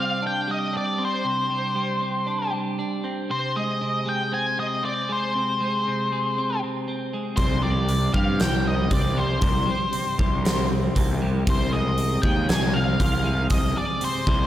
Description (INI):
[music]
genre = quiet-loud alternative rock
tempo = 118 BPM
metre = 4/4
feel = straight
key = C minor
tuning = A4 = 441 Hz
[part]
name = octave-fuzz lead guitar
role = melody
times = 0.0-14.5 s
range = C5 to Ab5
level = -26 LUFS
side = left 1 dB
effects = distortion, slapback echo
[part]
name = twelve-string electric guitar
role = arpeggios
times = 0.0-14.5 s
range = C3 to D4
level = -28 LUFS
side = right 1 dB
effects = lush chorus, slapback echo
[part]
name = fuzz picked electric bass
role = bass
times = 7.4-14.5 s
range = C2 to G2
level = -24 LUFS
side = equal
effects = overdrive
[part]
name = huge arena drum kit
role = drums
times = 7.4-14.4 s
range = hi-hat, kick drum, snare drum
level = -24 LUFS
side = equal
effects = none
[sound]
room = moderate lush hall reverb, RT60 1.9 s, studio ambience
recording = big arena sound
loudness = -21 LUFS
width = side -12 dB against mid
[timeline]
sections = 0.0-14.5 A section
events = none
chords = 0.0 Csus2; 3.3 Ab/C; 7.4 C5; 11.5 Ab/C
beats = 0.23 0.74 | 1.25 1.76 2.28 2.79 | 3.30 3.81 4.32 4.83 | 5.34 5.85 6.36 6.87 | 7.38 7.89 8.40 8.91 | 9.43 9.94 10.45 10.96 | 11.47 11.98 12.49 13.00 | 13.51 14.02